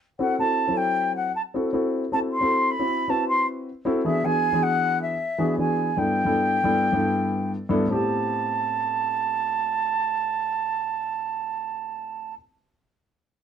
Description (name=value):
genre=progressive instrumental, progressive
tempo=156 BPM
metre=5/4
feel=straight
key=A dorian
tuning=A4 = 443 Hz
part: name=mellow concert flute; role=melody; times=0.2-12.3 s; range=E5 to C6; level=-24 LUFS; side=right 2 dB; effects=none
part: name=dark concert grand piano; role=accompaniment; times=0.2-12.4 s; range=G2 to C5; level=-24 LUFS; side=left 1 dB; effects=none
room=light reverb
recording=close, detailed microphones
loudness=-22 LUFS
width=side -8 dB against mid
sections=0.0-7.9 A section; 7.9-11.7 B section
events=none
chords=0.2 F#m7b5; 4.0 E7; 6.0 G6; 7.9 Am7